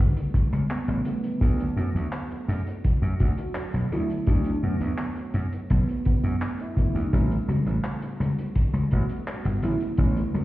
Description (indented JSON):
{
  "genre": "vaporwave",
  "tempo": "84 BPM",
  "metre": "4/4",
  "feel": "straight",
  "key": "D major",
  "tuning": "A4 = 439 Hz",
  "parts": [
    { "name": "warm velvety synth lead", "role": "melody", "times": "0.0-10.4 s", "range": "B3 to F#4", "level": "-32 LUFS", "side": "right 2 dB", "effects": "chorus, tape echo" },
    { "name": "warbly tape-like pad", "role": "sustained chords", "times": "0.0-10.4 s", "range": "C#3 to C#5", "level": "-35 LUFS", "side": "equal", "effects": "chorus, built-in reverb" },
    { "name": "slap bass", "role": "bass", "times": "0.0-10.4 s", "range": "G1 to F#2", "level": "-25 LUFS", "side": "equal", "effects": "none" },
    { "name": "cloth-damped thuddy drum kit", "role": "drums", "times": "0.2-10.4 s", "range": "handclaps, hi-hat", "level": "-40 LUFS", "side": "equal", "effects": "none" },
    { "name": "kick drum", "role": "drums", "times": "0.3-10.1 s", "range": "none", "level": "-23 LUFS", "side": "equal", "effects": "none" },
    { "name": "mellow FM electric piano", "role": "accompaniment", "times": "1.0-10.4 s", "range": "C#3 to F#4", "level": "-31 LUFS", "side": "right 1 dB", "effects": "phaser, lush chorus, analog delay" }
  ],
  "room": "light reverb, small room reverb",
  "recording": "heard muffled through a wall, stone room reverb, cassette tape, EQ",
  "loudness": "-23 LUFS",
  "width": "side -16 dB against mid",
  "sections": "0.0-10.4 A section",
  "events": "none",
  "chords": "0.0 A13; 1.1 D6; 7.1 A13"
}